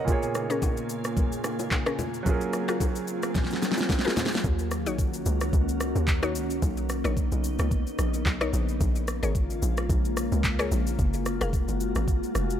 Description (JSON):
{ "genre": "amapiano", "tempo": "110 BPM", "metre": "4/4", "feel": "swing 55% on 16ths", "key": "Eb minor", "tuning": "A4 = 440 Hz", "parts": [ { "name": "warm grand piano", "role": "accompaniment", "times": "0.0-4.5 s", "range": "Bb2 to D#5", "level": "-32 LUFS", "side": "right 5 dB", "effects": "none" }, { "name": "glassy FM pad", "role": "sustained chords", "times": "0.0-12.6 s", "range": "C#3 to Ab4", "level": "-31 LUFS", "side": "left 1 dB", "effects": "ensemble chorus, built-in reverb" }, { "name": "smooth R&B drum kit", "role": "drums", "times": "0.1-12.6 s", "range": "handclaps, kick drum, rim click, shaker, snare drum", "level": "-28 LUFS", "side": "equal", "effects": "none" }, { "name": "congas and bongos", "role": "percussion", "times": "0.1-4.3 s", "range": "none", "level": "-35 LUFS", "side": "left 4 dB", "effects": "none" }, { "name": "swell", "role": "sound effects", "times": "2.6-4.4 s", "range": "none", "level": "-38 LUFS", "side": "right 4 dB", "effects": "none" }, { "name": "mallet-like synth pluck", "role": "stabs", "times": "0.5-11.5 s", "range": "Db4 to F5", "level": "-34 LUFS", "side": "left 5 dB", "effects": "chorus, tape echo" }, { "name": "hollow log drum bass", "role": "bass", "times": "4.4-12.6 s", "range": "F1 to Eb2", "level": "-28 LUFS", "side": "equal", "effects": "none" } ], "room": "digital ambience", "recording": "none", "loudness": "-24 LUFS", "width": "side -10 dB against mid", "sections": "0.0-4.4 A section; 4.4-12.6 B section", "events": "swell 2.6-4.4; drum fill 3.4-4.4; drop 4.4-12.6", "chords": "0.1 Bbm7; 2.3 Gbmaj9; 4.4 Ebm7; 6.6 Bmaj9; 8.8 Bbm7; 11.0 Gbmaj9" }